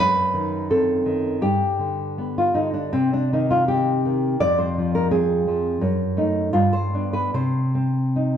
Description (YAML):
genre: romantic piece for solo classical guitar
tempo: 73-86 BPM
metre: 2/4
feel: rubato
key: C minor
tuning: A4 = 442 Hz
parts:
  - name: nylon-string guitar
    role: solo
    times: 0.0-8.4 s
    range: F2 to D5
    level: -19 LUFS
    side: equal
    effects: none
room: wet recital hall reverb, RT60 1.5 s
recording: dark, warm production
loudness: -19 LUFS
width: side -9 dB against mid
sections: 0.0-8.4 A section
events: none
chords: 0.0 F#dim7; 1.4 G; 3.0 Cm; 4.4 Fm; 5.8 F#m6; 6.5 G; 7.3 Cm